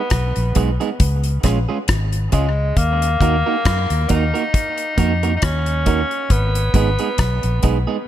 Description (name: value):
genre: dub reggae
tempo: 68 BPM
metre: 4/4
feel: swing 55% on 16ths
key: unclear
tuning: A4 = 440 Hz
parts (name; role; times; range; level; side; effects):
- clear tenor saxophone; melody; 0.0-8.1 s; Ab3 to Eb4; -23 LUFS; left 1 dB; dub echo
- vintage muted fingered electric bass; bass; 0.1-7.8 s; Ab1 to Gb2; -19 LUFS; left 1 dB; none
- damped 70s drum kit; drums; 0.1-7.9 s; hi-hat, kick drum, rim click; -19 LUFS; left 1 dB; none
- electric guitar at the edge of break-up; accompaniment; 0.6-8.0 s; Ab3 to Bb4; -24 LUFS; right 8 dB; dub echo
room: light reverb, studio ambience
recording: none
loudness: -16 LUFS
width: side -12 dB against mid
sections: 0.0-8.1 A section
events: none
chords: 0.0 Abm; 1.0 Db; 2.8 Ebm; 6.3 Abm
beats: 0.11 0.99 1.88 | 2.76 3.65 4.53 5.42 | 6.30 7.18 8.07